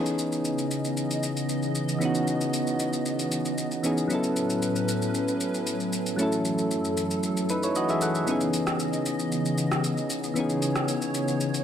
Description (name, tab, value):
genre	amapiano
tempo	115 BPM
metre	4/4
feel	straight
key	C# minor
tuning	A4 = 440 Hz
part	soft electric-piano-like synth keys	accompaniment	0.0-11.6 s	E3 to F#5	-26 LUFS	equal	chorus, tremolo
part	hollow soft pad	sustained chords	0.0-11.6 s	F#2 to D#5	-30 LUFS	equal	ensemble chorus
part	electronic shaker and rim click	drums	0.1-11.6 s	none	-34 LUFS	equal	none
room	light reverb, digital ambience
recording	none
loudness	-24 LUFS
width	side -9 dB against mid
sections	0.0-11.6 A section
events	none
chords	0.0 C#m9; 4.1 A69; 6.2 F#m7; 8.3 C#m9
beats	0.45 0.97 1.49 | 2.01 2.54 3.06 3.58 | 4.10 4.62 5.14 5.67 | 6.19 6.71 7.23 7.75 | 8.28 8.80 9.32 9.84 | 10.36 10.88 11.40